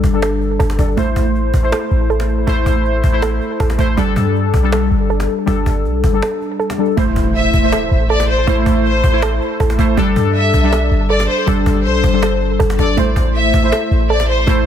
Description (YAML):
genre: hip hop, trap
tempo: 160 BPM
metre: 4/4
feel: half-time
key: A minor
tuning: A4 = 440 Hz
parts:
  - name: warbly lo-fi synth keys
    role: accompaniment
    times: 0.0-14.7 s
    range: G3 to C5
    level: -18 LUFS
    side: left 2 dB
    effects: chorus
  - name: soft round pluck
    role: arpeggios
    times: 0.0-14.7 s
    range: G3 to A4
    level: -22 LUFS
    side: right 6 dB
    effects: chorus, tape echo
  - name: clean 808-style bass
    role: bass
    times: 0.0-14.7 s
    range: G1 to G2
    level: -16 LUFS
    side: equal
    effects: none
  - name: cajon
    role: drums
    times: 0.0-14.6 s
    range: none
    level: -24 LUFS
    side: equal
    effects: none
  - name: impact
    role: sound effects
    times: 7.0-8.5 s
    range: none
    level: -26 LUFS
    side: left 1 dB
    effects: none
  - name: rich studio violin section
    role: second line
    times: 7.4-14.5 s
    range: C5 to E5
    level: -19 LUFS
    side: left 2 dB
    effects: tape echo
room: light reverb, small room reverb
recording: dense, heavily limited modern master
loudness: -13 LUFS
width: side -9 dB against mid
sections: 0.0-7.0 A section; 7.0-14.7 B section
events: break 6.2-7.0; impact 7.0-8.5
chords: 0.0 Gsus2; 1.0 Am; 4.0 Gsus2; 7.0 Am; 10.0 Gsus2; 13.0 Am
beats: 0.23 0.60 | 0.97 1.35 1.73 2.10 | 2.48 2.85 3.23 3.60 | 3.98 4.35 4.72 5.10 | 5.47 5.85 6.22 6.60 | 6.97 7.35 7.72 8.10 | 8.47 8.85 9.22 9.60 | 9.97 10.35 10.72 11.10 | 11.47 11.85 12.22 12.60 | 12.97 13.35 13.72 14.10 | 14.47